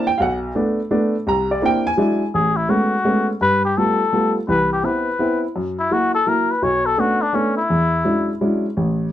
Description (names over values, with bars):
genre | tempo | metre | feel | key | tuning
jazz | 168 BPM | 3/4 | swing 64% on 8ths | A major | A4 = 440 Hz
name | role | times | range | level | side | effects
warm baby grand piano | accompaniment | 0.0-9.1 s | A1 to Bb5 | -18 LUFS | equal | none
trumpet with cup mute | melody | 2.3-8.4 s | C#4 to C#5 | -19 LUFS | left 3 dB | none
room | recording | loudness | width
moderate small room reverb, RT60 0.5 s | none | -16 LUFS | side -12 dB against mid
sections
0.0-2.3 A section; 2.3-9.1 B section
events
none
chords
0.2 Bm7; 1.3 C9; 2.0 E9; 2.3 Amaj9; 3.4 G9; 4.5 Cmaj7; 5.6 F#7; 6.6 Bm9; 7.7 E13